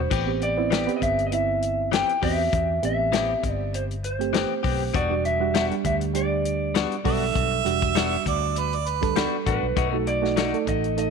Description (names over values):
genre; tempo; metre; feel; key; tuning
straight-eighth soul blues; 100 BPM; 4/4; swing 55% on 16ths; E minor; A4 = 443 Hz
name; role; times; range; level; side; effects
electric guitar through a small old amp; melody; 0.0-11.1 s; B4 to G5; -26 LUFS; left 1 dB; none
reed electric piano; accompaniment; 0.0-11.1 s; G3 to A4; -28 LUFS; right 15 dB; none
vintage muted fingered electric bass; bass; 0.0-11.1 s; E1 to E2; -29 LUFS; left 1 dB; none
direct-recorded clean electric guitar; stabs; 0.1-10.6 s; E3 to G4; -30 LUFS; left 14 dB; spring reverb, tape echo
warm soul drum kit; drums; 0.1-11.1 s; hi-hat, kick drum, snare drum, splash cymbal; -28 LUFS; left 5 dB; none
clear harmonica; second line; 7.1-9.3 s; B4 to E5; -26 LUFS; right 12 dB; none
room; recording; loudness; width
light reverb; 1960s-style stereo with parts hard left and right; -21 LUFS; side -5 dB against mid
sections
0.0-11.1 A section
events
none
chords
0.1 Am9; 4.9 Em9; 9.8 B7